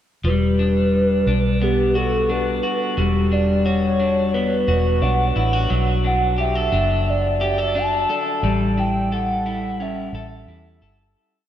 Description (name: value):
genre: dream pop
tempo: 88 BPM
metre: 4/4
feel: straight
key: E dorian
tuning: A4 = 439 Hz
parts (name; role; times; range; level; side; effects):
- electric guitar at the edge of break-up; arpeggios; 0.2-11.5 s; F#3 to A4; -21 LUFS; left 2 dB; wide subtle chorus, diffuse ambient delay
- vintage muted fingered electric bass; bass; 0.2-11.1 s; E1 to E2; -22 LUFS; equal; none
- warbly nostalgic lead; melody; 0.3-10.8 s; G4 to A5; -22 LUFS; right 1 dB; chorus, diffuse ambient delay
room: wet cathedral reverb, RT60 5.9 s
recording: dreamy mix soaked in reverb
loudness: -17 LUFS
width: side -10 dB against mid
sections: 0.2-11.2 verse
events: fade-out 8.4-11.2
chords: 0.2 Em9; 5.7 Bm7; 8.4 A7